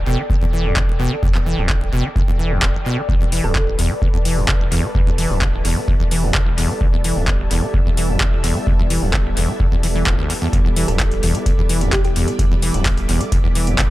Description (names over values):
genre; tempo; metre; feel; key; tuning
acid house; 129 BPM; 4/4; straight; E minor; A4 = 440 Hz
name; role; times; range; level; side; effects
warm sub bass; bass; 0.0-13.9 s; D1 to E1; -21 LUFS; equal; tube saturation, sidechain pumping
ethereal airy pad; texture; 0.0-13.9 s; A4 to D6; -29 LUFS; equal; ensemble chorus, built-in reverb, sidechain pumping
acid bass, saw; riff; 0.1-13.9 s; E1 to E3; -22 LUFS; equal; tube saturation, wide subtle chorus, sidechain pumping, dub echo
electronic kick drum; drums; 0.3-13.9 s; none; -18 LUFS; equal; none
electro analog drum machine; drums; 0.8-13.9 s; handclaps, hi-hat; -24 LUFS; equal; dub echo
string machine, full ensemble; sustained chords; 3.1-13.9 s; G3 to E5; -28 LUFS; equal; ensemble chorus, sidechain pumping
thumb-piano-like synth pluck; melody; 3.4-3.8, 10.9-12.1 s; G4 to A4; -29 LUFS; right 1 dB; ensemble chorus, dub echo
room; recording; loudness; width
little or no reverb; echo-heavy mix, faint mains hum; -15 LUFS; side -16 dB against mid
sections
0.0-13.9 A section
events
none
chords
0.0 Em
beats
0.30 0.76 | 1.23 1.69 2.16 2.62 | 3.09 3.55 4.02 4.49 | 4.95 5.42 5.88 6.34 | 6.81 7.28 7.74 8.21 | 8.67 9.14 9.60 10.07 | 10.53 11.00 11.46 11.93 | 12.39 12.86 13.32 13.79